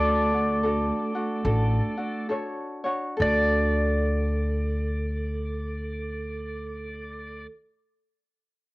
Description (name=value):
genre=Hawaiian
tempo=65-78 BPM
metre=4/4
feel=swing 62% on 8ths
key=D major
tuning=A4 = 440 Hz
part: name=pedal steel guitar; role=melody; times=0.0-7.5 s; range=A4 to D5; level=-28 LUFS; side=left 1 dB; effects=cassette tape
part: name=vibraphone with medium hard mallets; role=second line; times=0.0-7.4 s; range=A3 to A4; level=-32 LUFS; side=right 3 dB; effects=cassette tape
part: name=ukulele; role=accompaniment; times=0.0-7.5 s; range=D4 to C#5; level=-30 LUFS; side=left 1 dB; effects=cassette tape, plate reverb
part: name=upright bass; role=bass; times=0.0-7.4 s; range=A1 to D2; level=-27 LUFS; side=equal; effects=tube saturation
room=moderate small room reverb, RT60 0.6 s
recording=home recording on cassette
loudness=-24 LUFS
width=side -21 dB against mid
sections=0.0-3.2 A section; 3.2-6.9 B section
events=slowing down 0.0-3.2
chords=0.0 Dmaj7; 3.2 D